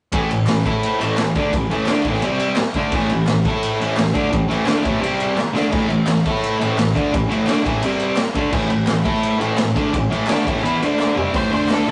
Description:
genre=garage rock duo or trio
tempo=171 BPM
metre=4/4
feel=straight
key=A minor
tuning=A4 = 439 Hz
part: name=fuzz guitar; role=riff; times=0.1-11.9 s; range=A2 to A4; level=-20 LUFS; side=equal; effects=distortion
part: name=raw garage drum kit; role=drums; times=0.1-11.9 s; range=crash cymbal, hi-hat, kick drum, ride cymbal, snare drum, toms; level=-25 LUFS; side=equal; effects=none
part: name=group handclap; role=percussion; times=0.5-11.8 s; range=none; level=-30 LUFS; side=equal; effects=none
part: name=octave-fuzz lead guitar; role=melody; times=11.4-11.9 s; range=A4 to C5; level=-25 LUFS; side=equal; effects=distortion
room=wet studio reverb, RT60 0.6 s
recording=rough rehearsal-room recording, warm saturation, nothing above 10.5 kHz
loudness=-19 LUFS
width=mono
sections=0.1-11.3 A section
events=drum fill 5.4-5.7, 11.0-11.3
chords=0.1 A5; 2.2 C5; 2.6 A5; 5.0 C5; 5.4 A5; 7.8 C5; 8.2 A5; 10.8 D5; 11.2 C5; 11.3 Am; 11.5 D5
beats=| 0.12 0.47 0.82 1.17 | 1.52 1.87 2.22 2.57 | 2.92 3.27 3.62 3.98 | 4.33 4.68 5.03 5.38 | 5.73 6.08 6.43 6.78 | 7.13 7.48 7.83 8.18 | 8.54 8.88 9.24 9.59 | 9.94 10.29 10.64 10.99 | 11.34 11.69

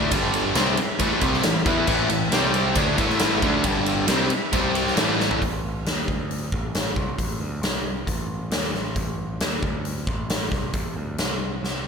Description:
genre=hard rock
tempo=135 BPM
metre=4/4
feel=straight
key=A minor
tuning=A4 = 439 Hz
part: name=overdriven tonewheel organ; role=sustained chords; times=0.0-5.4 s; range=G3 to D5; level=-32 LUFS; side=equal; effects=none
part: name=distorted electric guitar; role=riff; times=0.0-5.4 s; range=G2 to E4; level=-26 LUFS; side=equal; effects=overdrive, slapback echo
part: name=sludgy distorted guitar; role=riff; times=0.0-5.4 s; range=G2 to E4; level=-26 LUFS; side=left 8 dB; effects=overdrive, slapback echo
part: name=sludgy distorted guitar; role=riff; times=0.0-5.4 s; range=G2 to E4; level=-27 LUFS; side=right 8 dB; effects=overdrive
part: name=growling picked electric bass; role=bass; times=0.0-11.9 s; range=G1 to E2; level=-30 LUFS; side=equal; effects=overdrive
part: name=huge arena drum kit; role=drums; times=0.1-11.7 s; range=crash cymbal, hi-hat, kick drum, ride cymbal, snare drum, toms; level=-24 LUFS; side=equal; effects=none
room=moderate recital hall reverb, RT60 1.4 s, small room ambience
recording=big arena sound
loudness=-21 LUFS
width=side -6 dB against mid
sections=0.0-5.4 A section; 5.4-11.9 B section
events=drum fill 5.2, 11.6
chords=0.1 G5; 0.6 Am; 2.3 C5; 2.8 A5; 3.6 G5; 4.1 Am; 4.5 C5; 5.0 A5; 5.4 N.C.; 6.5 Am; 7.6 N.C.; 10.1 Am; 11.2 N.C.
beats=| 0.11 0.55 0.99 1.44 | 1.88 2.32 2.76 3.20 | 3.64 4.08 4.53 4.97 | 5.41 5.85 6.30 6.74 | 7.18 7.63 8.07 8.52 | 8.96 9.40 9.85 10.29 | 10.74 11.18 11.63

